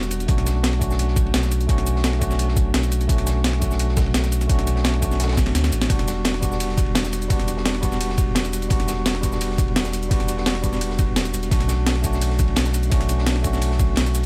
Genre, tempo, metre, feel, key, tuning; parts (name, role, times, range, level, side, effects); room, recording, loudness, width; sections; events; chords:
liquid drum and bass; 171 BPM; 4/4; straight; E dorian; A4 = 440 Hz
tine electric piano; accompaniment; 0.0-14.3 s; G3 to F#4; -29 LUFS; equal; dub echo
warm sub bass; bass; 0.0-14.3 s; E1 to D2; -25 LUFS; equal
breakbeat sampler-style drum kit; drums; 0.0-14.2 s; cabasa, hi-hat, ride cymbal, snare drum; -28 LUFS; equal; overdrive
crunchy breakbeat drum kit; drums; 0.0-14.3 s; ride cymbal, snare drum; -36 LUFS; equal; high-pass filter on cymbals, high-pass filter on snare, high-pass filter on room
electronic kick drum; drums; 0.3-13.9 s; -25 LUFS; equal; overdrive
digital ambience; -21 LUFS; mono
0.0-14.3 A section
drum fill 5.4-5.9
0.3 Bm9; 5.9 Em7; 11.5 Bm9